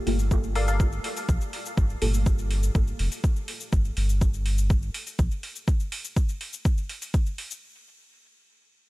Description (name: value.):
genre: dub techno.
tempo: 123 BPM.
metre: 4/4.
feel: straight.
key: G minor.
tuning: A4 = 440 Hz.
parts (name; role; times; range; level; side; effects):
deep mellow chord stab; stabs; 0.0-3.9 s; Bb3 to A4; -34 LUFS; equal; chorus, phaser, sidechain pumping, dub echo.
soft dub sub bass; bass; 0.1-5.3 s; F1 to Bb1; -25 LUFS; equal; sidechain pumping.
electronic hi-hat and cabasa; drums; 0.1-7.6 s; none; -37 LUFS; left 1 dB; overdrive.
electronic kick drum; drums; 0.3-7.2 s; none; -23 LUFS; equal; overdrive.
wavetable chord stab; riff; 0.6-0.8 s; A4 to F5; -35 LUFS; left 3 dB; sidechain pumping, dub echo.
room: digital ambience.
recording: none.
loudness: -23 LUFS.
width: side -19 dB against mid.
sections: 0.0-7.6 A section.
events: filter sweep on synth stab 0.0-3.7.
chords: 0.0 Gm9.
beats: 0.31 0.80 1.29 | 1.77 2.26 2.75 3.24 | 3.73 4.21 4.70 5.19 | 5.68 6.16 6.65 7.14.